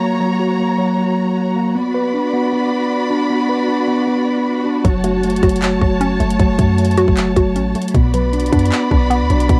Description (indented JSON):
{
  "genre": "hip hop, trap",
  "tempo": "155 BPM",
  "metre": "4/4",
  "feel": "half-time",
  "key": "B minor",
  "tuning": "A4 = 440 Hz",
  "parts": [
    { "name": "dark symphonic string section", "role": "sustained chords", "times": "0.0-9.6 s", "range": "F#4 to B5", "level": "-24 LUFS", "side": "equal", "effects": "cassette tape" },
    { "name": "mellow tine electric piano", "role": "arpeggios", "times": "0.0-9.6 s", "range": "F#3 to B4", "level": "-19 LUFS", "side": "equal", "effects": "low-pass filter, cassette tape, analog delay" },
    { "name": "hollow square pluck", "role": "accompaniment", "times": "4.8-9.6 s", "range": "B2 to F#4", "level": "-23 LUFS", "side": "equal", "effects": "chorus, low-pass filter, cassette tape" },
    { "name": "clean 808-style bass", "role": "bass", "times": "4.8-9.6 s", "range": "F#1 to F#2", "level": "-21 LUFS", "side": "equal", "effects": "none" },
    { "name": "trap drum kit", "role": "drums", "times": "4.8-9.6 s", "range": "handclaps, hi-hat, kick drum", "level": "-20 LUFS", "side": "equal", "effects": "cassette tape" }
  ],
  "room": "little or no reverb",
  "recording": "home recording on cassette",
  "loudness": "-16 LUFS",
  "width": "mono",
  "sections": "0.0-9.6 A section",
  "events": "none",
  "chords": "0.0 F#; 1.8 Bm; 4.8 F#m; 7.9 Bm"
}